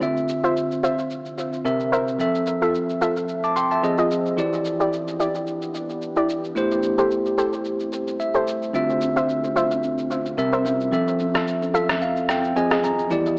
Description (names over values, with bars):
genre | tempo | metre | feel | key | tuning
amapiano | 110 BPM | 4/4 | swing 55% on 16ths | unclear | A4 = 440 Hz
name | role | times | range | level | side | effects
bell-like tine electric piano | accompaniment | 0.0-13.4 s | C3 to D6 | -22 LUFS | equal | medium stereo tremolo, cassette tape
deep dark ambient pad | sustained chords | 0.0-13.4 s | D3 to E5 | -32 LUFS | equal | chorus, built-in reverb, cassette tape
electronic shaker and rim click | drums | 0.0-13.4 s | none | -30 LUFS | equal | overdrive, cassette tape
soft round pluck | stabs | 0.4-12.8 s | E4 to E5 | -24 LUFS | equal | chorus, cassette tape, analog delay
modern bright fingered electric bass | bass | 8.7-13.4 s | C2 to F2 | -30 LUFS | equal | none
congas | percussion | 8.7-13.2 s | none | -35 LUFS | equal | none
room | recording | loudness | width
light reverb | home recording on cassette, AM radio sound | -20 LUFS | side -35 dB against mid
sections
0.0-13.4 A section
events
break 7.7-8.7; tine electric piano fill 7.9-8.7, 11.5-13.1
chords
0.0 Dm9; 1.7 C7; 2.2 Fmaj7; 3.8 Fm7; 4.4 Em7; 6.6 Am7; 8.7 Dm9; 10.4 C7; 10.9 Fmaj7; 12.6 Fm7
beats
| 0.02 0.56 1.11 1.65 | 2.20 2.74 3.29 3.83 | 4.38 4.92 5.47 6.02 | 6.56 7.11 7.65 8.20 | 8.74 9.29 9.83 10.38 | 10.93 11.47 12.02 12.56 | 13.11